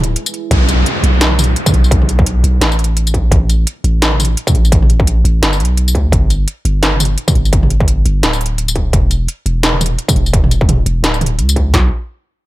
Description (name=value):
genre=half-time drum and bass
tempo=171 BPM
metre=4/4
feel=swing 58% on 16ths, half-time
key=unclear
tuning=A4 = 442 Hz
part: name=deep dark ambient pad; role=sustained chords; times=0.0-0.5 s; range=E4 to B4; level=-30 LUFS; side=right 2 dB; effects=none
part: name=long sustained 808-style bass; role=bass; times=0.0-11.9 s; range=D1 to D2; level=-13 LUFS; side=equal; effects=none
part: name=industrial drum kit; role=drums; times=0.0-11.6 s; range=hi-hat, snare drum, tambourine, toms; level=-16 LUFS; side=equal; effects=none
part: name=industrial drum kit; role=drums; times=0.5-11.8 s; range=kick drum, snare drum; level=-13 LUFS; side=equal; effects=distortion
part: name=downlifter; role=sound effects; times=0.5-3.3 s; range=none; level=-20 LUFS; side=equal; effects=none
room=little or no reverb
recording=none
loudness=-11 LUFS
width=side -17 dB against mid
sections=0.5-11.7 A section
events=break 0.2-0.5; filter sweep on 808-style bass 0.5-11.7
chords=0.0 E; 0.5 Asus2; 3.3 N.C.; 6.1 G5; 8.9 Dsus2; 11.7 N.C.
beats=0.16 | 0.51 0.86 1.21 1.56 | 1.91 2.27 2.62 2.97 | 3.32 3.67 4.02 4.37 | 4.72 5.07 5.42 5.77 | 6.12 6.47 6.83 7.18 | 7.53 7.88 8.23 8.58 | 8.93 9.28 9.63 9.98 | 10.34 10.69 11.04 11.39 | 11.74